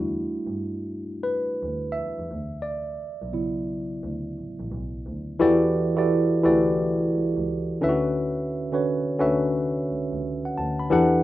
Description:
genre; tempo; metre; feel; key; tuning
R&B; 87 BPM; 4/4; swing 64% on 16ths; unclear; A4 = 443 Hz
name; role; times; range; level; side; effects
tine electric piano; accompaniment; 0.0-11.2 s; C#3 to B5; -23 LUFS; moving between left 2 dB and right 4 dB; auto-pan
muted double bass; bass; 0.0-11.2 s; A1 to G2; -34 LUFS; equal; none
room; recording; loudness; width
wet studio reverb, RT60 0.7 s; rough home demo mix; -23 LUFS; side -15 dB against mid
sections
0.0-5.4 A section; 5.4-11.2 B section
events
tine electric piano solo 0.0-5.4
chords
0.0 Em11; 2.3 Dmaj13; 5.4 Em11; 7.8 Dmaj13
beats
0.57 1.26 1.95 | 2.63 3.33 4.01 4.70 | 5.39 6.08 6.77 7.46 | 8.15 8.84 9.53 10.22 | 10.91

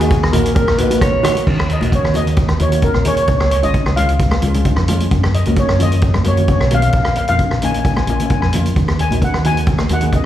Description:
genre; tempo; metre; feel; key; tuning
calypso; 132 BPM; 4/4; swing 53% on 16ths; Eb minor; A4 = 440 Hz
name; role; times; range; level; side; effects
steel pan; melody; 0.0-10.3 s; Bb4 to Ab5; -20 LUFS; left 1 dB; slapback echo
mellow alto saxophone; second line; 0.0-1.5 s; Ab4 to Db5; -20 LUFS; equal; slapback echo, ping-pong delay
steel pan; accompaniment; 0.0-10.2 s; Ab3 to Ab4; -22 LUFS; left 2 dB; slapback echo
fingered electric bass; bass; 0.0-10.2 s; Ab1 to Gb2; -17 LUFS; equal; none
street-band drum kit; drums; 0.0-10.2 s; crash cymbal, hi-hat, kick drum, rim click; -18 LUFS; equal; none
congas; percussion; 0.3-10.1 s; none; -24 LUFS; right 1 dB; slapback echo
room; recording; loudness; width
small room ambience; live gig heard through the venue's PA, club reverb; -13 LUFS; side -12 dB against mid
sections
0.0-1.5 A section; 1.5-10.3 B section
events
none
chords
0.0 Ebm7; 1.5 Ebm; 3.3 Db; 5.1 Gb; 6.9 Bbm; 8.8 Ebm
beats
0.11 0.56 1.01 | 1.47 1.93 2.38 2.84 | 3.29 3.75 4.20 4.66 | 5.12 5.57 6.03 6.48 | 6.94 7.39 7.85 8.31 | 8.76 9.22 9.67 10.13

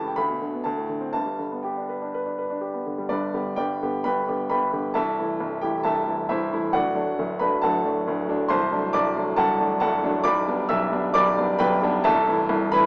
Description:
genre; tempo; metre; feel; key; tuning
classical, virtuoso piano study; 118-138 BPM; 4/4; rubato; G major; A4 = 441 Hz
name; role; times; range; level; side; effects
clear baby grand piano; solo; 0.0-12.9 s; B0 to E6; -21 LUFS; equal; none
room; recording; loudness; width
light reverb; small speaker sound; -21 LUFS; side -30 dB against mid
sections
0.0-3.1 A section; 3.1-12.9 B section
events
none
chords
0.2 Bm/D; 0.6 D5; 1.1 G; 4.9 Am/C; 6.7 D; 8.5 D7/C; 10.3 G/B; 12.1 Am/C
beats
0.18 0.65 | 1.14 1.65 2.15 2.63 | 3.11 3.58 4.05 4.50 | 4.95 5.39 5.84 6.30 | 6.74 7.19 7.63 8.07 | 8.51 8.95 9.38 9.82 | 10.26 10.70 11.16 11.61 | 12.06 12.51

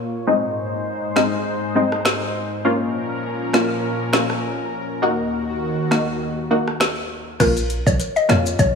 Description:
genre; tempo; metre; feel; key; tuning
dancehall; 101 BPM; 4/4; swing 56% on 16ths; Bb minor; A4 = 440 Hz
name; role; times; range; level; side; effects
lush unison pad; sustained chords; 0.0-7.4 s; Eb2 to Db5; -24 LUFS; left 1 dB; chorus, low-pass filter
punchy chord stab; accompaniment; 0.3-8.6 s; Ab3 to Gb4; -21 LUFS; left 1 dB; chorus, sidechain pumping, low-pass filter
afro-pop drum kit; drums; 1.2-8.7 s; crash cymbal, hi-hat, kick drum, rim click, snare drum; -22 LUFS; equal; none
mallet-like synth pluck; melody; 7.4-8.7 s; Bb4 to Eb5; -20 LUFS; left 2 dB; chorus
warm 808-style bass; bass; 7.4-8.8 s; Bb1 to F2; -21 LUFS; equal; none
maracas; percussion; 7.4-8.7 s; none; -31 LUFS; left 5 dB; none
room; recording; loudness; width
moderate lush hall reverb, RT60 2.0 s; small room ambience; -18 LUFS; side -5 dB against mid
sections
0.0-7.4 A section; 7.4-8.8 B section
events
none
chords
0.3 Ab; 2.6 Bbm; 5.0 Ebm; 7.4 Bbm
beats
| 0.27 0.87 1.46 2.06 | 2.65 3.24 3.84 4.43 | 5.03 5.62 6.21 6.81 | 7.40 8.00 8.59

